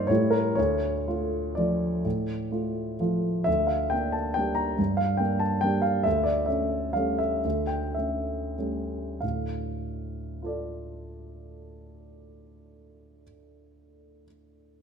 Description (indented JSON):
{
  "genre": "classical, piano waltz",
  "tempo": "90-150 BPM",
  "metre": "3/4",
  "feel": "rubato",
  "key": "D minor",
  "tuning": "A4 = 440 Hz",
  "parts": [
    { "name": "warm grand piano", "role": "solo", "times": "0.0-14.8 s", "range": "D2 to Bb5", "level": "-25 LUFS", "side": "equal", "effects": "none" }
  ],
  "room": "moderate stone room reverb, RT60 1.3 s",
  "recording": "none",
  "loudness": "-25 LUFS",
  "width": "side -6 dB against mid",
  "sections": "0.0-3.5 A section; 3.5-9.2 B section; 9.2-12.8 C section",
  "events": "slowing down 5.4-9.2",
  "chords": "0.1 A7; 0.6 Dm; 3.5 Gm/D; 6.0 A7/D; 9.2 Dm"
}